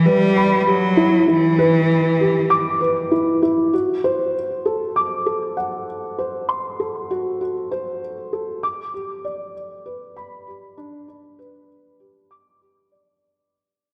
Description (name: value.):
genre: electronica.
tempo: 98 BPM.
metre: 4/4.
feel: straight.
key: unclear.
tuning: A4 = 439 Hz.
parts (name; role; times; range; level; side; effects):
rich cello; melody; 0.0-3.1 s; E3 to G3; -21 LUFS; equal; none.
felt-muted upright piano; riff; 0.0-13.6 s; D4 to D6; -22 LUFS; equal; digital delay.
room: wet concert hall reverb, RT60 2.2 s.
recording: none.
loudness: -20 LUFS.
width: mono.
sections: 0.0-3.7 A section; 3.7-13.5 B section.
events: drop 0.0-3.7; fade-out 3.7-13.5.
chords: 0.0 Em; 3.7 F#dim; 8.6 G.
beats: 0.06 0.67 | 1.28 1.89 2.51 3.12 | 3.73 4.34 4.96 5.57 | 6.18 6.79 7.40 8.02 | 8.63 9.24 9.85 10.46 | 11.08 11.69 12.30 12.91.